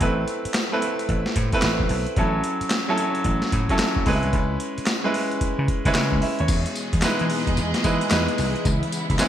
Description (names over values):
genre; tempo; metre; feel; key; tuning
R&B, new jack swing; 111 BPM; 4/4; swing 64% on 16ths; E major; A4 = 440 Hz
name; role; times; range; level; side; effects
bright concert grand piano; accompaniment; 0.0-9.3 s; F#3 to E5; -24 LUFS; right 1 dB; tube saturation
vintage slap bass; bass; 0.0-9.2 s; A1 to E3; -25 LUFS; equal; none
boom bap sampler-style drum kit; drums; 0.0-9.3 s; crash cymbal, handclaps, hi-hat, kick drum, snare drum, tambourine; -24 LUFS; equal; gated reverb
warm studio string section; sustained chords; 6.5-9.3 s; B2 to D#5; -27 LUFS; left 1 dB; none
room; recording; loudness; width
moderate plate reverb, RT60 2.0 s, digital ambience; bright 1980s-style digital production; -20 LUFS; side -10 dB against mid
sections
0.0-6.5 A section; 6.5-9.3 B section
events
none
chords
0.0 Amadd9; 2.2 A6; 4.1 C#m7